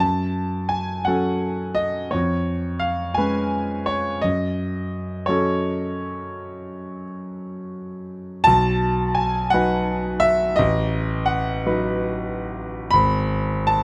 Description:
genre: classical, romantic nocturne for solo piano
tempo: 57 BPM (dotted quarters)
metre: 12/8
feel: rubato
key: unclear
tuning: A4 = 440 Hz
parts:
  - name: clear grand piano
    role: solo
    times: 0.0-13.8 s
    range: G#1 to B5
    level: -23 LUFS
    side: equal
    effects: none
room: light reverb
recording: none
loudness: -22 LUFS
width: mono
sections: 0.0-13.8 A section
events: none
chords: 0.0 F#m; 2.1 C#7/E#; 4.2 F#m; 8.5 B; 10.6 B7/A; 12.9 E/G# (rootless)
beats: | 0.04 1.07 2.13 3.17 | 4.24 5.29 6.34 7.39 | 8.47 9.52 10.58 11.65 | 12.93

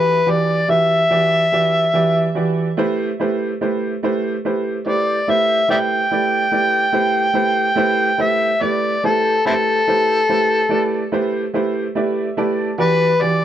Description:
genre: blues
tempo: 48 BPM (dotted quarters)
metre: 12/8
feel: straight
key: unclear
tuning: A4 = 440 Hz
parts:
  - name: overdriven harmonica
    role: melody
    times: 0.0-13.4 s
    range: C4 to G5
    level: -16 LUFS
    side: left 1 dB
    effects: none
  - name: clear upright piano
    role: accompaniment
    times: 0.0-13.4 s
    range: E3 to A5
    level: -19 LUFS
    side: right 2 dB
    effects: none
room: moderate club reverb, RT60 0.5 s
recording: none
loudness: -15 LUFS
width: side -10 dB against mid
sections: 0.0-13.4 A section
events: upright piano fill 11.5-12.8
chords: 0.0 Em7; 2.8 Am7; 12.8 Em7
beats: 0.27 1.52 | 2.77 4.02 5.27 6.52 | 7.78 9.03 10.28 11.53 | 12.78

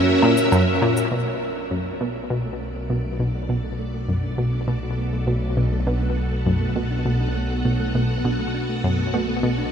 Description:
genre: ambient, sequencer-driven space music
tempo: 101 BPM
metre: 4/4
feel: straight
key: B minor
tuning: A4 = 440 Hz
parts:
  - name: soft octave-layered synth lead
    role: melody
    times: 0.0-0.5 s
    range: A#4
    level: -33 LUFS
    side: right 2 dB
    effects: none
  - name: string machine, full ensemble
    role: sustained chords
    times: 0.0-9.7 s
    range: B3 to F#5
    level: -25 LUFS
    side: equal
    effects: ensemble chorus
  - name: analog pluck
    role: riff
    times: 0.0-9.6 s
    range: F#2 to B2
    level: -23 LUFS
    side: equal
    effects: chorus, vintage 12-bit sampler grit, ping-pong delay
  - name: woodblock and shaker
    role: percussion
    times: 0.2-1.1 s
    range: none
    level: -32 LUFS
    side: left 1 dB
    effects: overdrive, ping-pong delay
  - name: thumb-piano-like synth pluck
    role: arpeggios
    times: 1.1-9.7 s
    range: A3 to F#4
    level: -32 LUFS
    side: right 2 dB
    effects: chorus, auto-pan, ping-pong delay
  - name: fat analog bass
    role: bass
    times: 1.1-9.7 s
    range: B1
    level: -26 LUFS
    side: equal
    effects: none
room: moderate huge ambient reverb, RT60 7.7 s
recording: in a vast, echoing space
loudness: -20 LUFS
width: side -8 dB against mid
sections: 0.0-1.1 A section; 1.1-9.7 B section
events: fade-in on synth arpeggio sound 1.1-9.7; fade-in on string machine 1.1-9.7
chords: 0.0 F#7; 1.1 Bm7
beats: 0.52 | 1.12 1.71 2.30 2.90 | 3.49 4.09 4.68 5.27 | 5.87 6.46 7.06 7.65 | 8.24 8.84 9.43

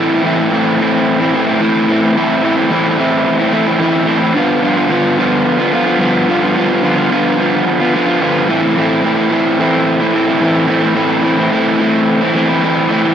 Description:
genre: rock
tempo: 109 BPM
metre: 4/4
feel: straight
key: unclear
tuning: A4 = 440 Hz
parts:
  - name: crunchy overdriven guitar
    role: solo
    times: 0.0-13.1 s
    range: G2 to F4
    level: -11 LUFS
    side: equal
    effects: none
room: light reverb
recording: dark, warm production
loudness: -11 LUFS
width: side -9 dB against mid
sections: 0.0-13.1 A section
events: none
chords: 0.0 Am; 4.4 G7; 8.5 Am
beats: 0.50 1.05 1.60 | 2.16 2.71 3.26 3.81 | 4.36 4.91 5.46 6.01 | 6.56 7.11 7.66 8.21 | 8.77 9.31 9.87 10.42 | 10.97 11.52 12.07 12.62

